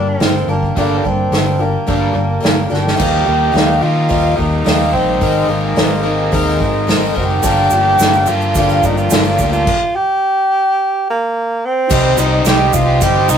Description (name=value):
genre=folk rock and heartland rock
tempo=108 BPM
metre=4/4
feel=straight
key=unclear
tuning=A4 = 435 Hz
part: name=warm tenor saxophone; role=melody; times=0.0-13.4 s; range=Bb3 to G4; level=-16 LUFS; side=right 2 dB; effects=none
part: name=picked twelve-string acoustic guitar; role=accompaniment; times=0.0-13.4 s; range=G2 to Bb4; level=-19 LUFS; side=left 2 dB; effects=none
part: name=crunchy overdriven guitar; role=riff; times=0.0-13.4 s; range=G2 to Bb4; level=-21 LUFS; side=right 1 dB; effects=none
part: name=fingered electric bass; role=bass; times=0.0-13.4 s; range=F#1 to Eb3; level=-18 LUFS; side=left 1 dB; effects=none
part: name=unplugged drum kit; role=drums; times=0.2-13.4 s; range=crash cymbal, hi-hat, kick drum, ride cymbal, snare drum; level=-18 LUFS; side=equal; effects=none
part: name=accordion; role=sustained chords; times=3.0-13.4 s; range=G4 to C6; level=-24 LUFS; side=right 1 dB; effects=none
part: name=tube shaker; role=percussion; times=7.4-13.4 s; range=none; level=-25 LUFS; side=right 8 dB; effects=none
part: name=warm upright piano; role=accompaniment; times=11.9-13.4 s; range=Eb4 to C5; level=-31 LUFS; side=right 1 dB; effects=none
room=moderate studio reverb, RT60 0.6 s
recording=rough rehearsal-room recording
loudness=-12 LUFS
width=side -8 dB against mid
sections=0.0-3.0 A section; 3.0-11.9 B section; 11.9-13.4 C section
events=drum fill 2.7; stop 9.7-11.9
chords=0.0 Gm; 3.0 Ebadd9; 5.2 Abadd9; 7.4 Gm7; 9.7 N.C.; 11.9 Cm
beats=0.21 | 0.76 1.32 1.87 2.43 | 2.99 3.54 4.10 4.66 | 5.21 5.77 6.33 6.88 | 7.44 8.00 8.56 9.11 | 9.67 10.23 10.79 11.34 | 11.90 12.45 13.01